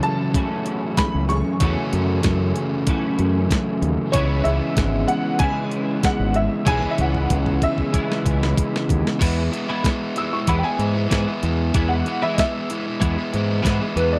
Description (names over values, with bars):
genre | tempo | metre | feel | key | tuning
indie rock | 95 BPM | 4/4 | straight | E major from 9.2 s | A4 = 440 Hz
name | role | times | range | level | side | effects
clear upright piano | melody | 0.0-14.2 s | B4 to E6 | -28 LUFS | equal | slapback echo
overdriven electric guitar | riff | 0.0-14.2 s | F#2 to E4 | -27 LUFS | equal | none
twelve-string electric guitar | riff | 0.0-13.8 s | F#2 to F#4 | -29 LUFS | equal | ensemble chorus, slapback echo
crisp 8-bit digital drum machine | drums | 0.0-14.1 s | crash cymbal, hi-hat, kick drum, snare drum | -24 LUFS | equal | none
growling fingered electric bass | bass | 1.1-14.2 s | G#1 to G#2 | -24 LUFS | equal | overdrive
room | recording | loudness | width
light reverb | dry, close 1970s-style studio recording | -21 LUFS | mono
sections
0.0-9.2 A section; 9.2-14.2 B section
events
drum fill 6.7-9.2; upright piano solo 9.2-14.2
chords
0.0 F#m7; 4.1 C#m7; 9.2 E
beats
0.34 0.98 | 1.61 2.25 2.88 3.51 | 4.14 4.78 5.41 6.04 | 6.67 7.31 7.94 8.57 | 9.21 9.84 10.47 11.11 | 11.74 12.38 13.01 13.65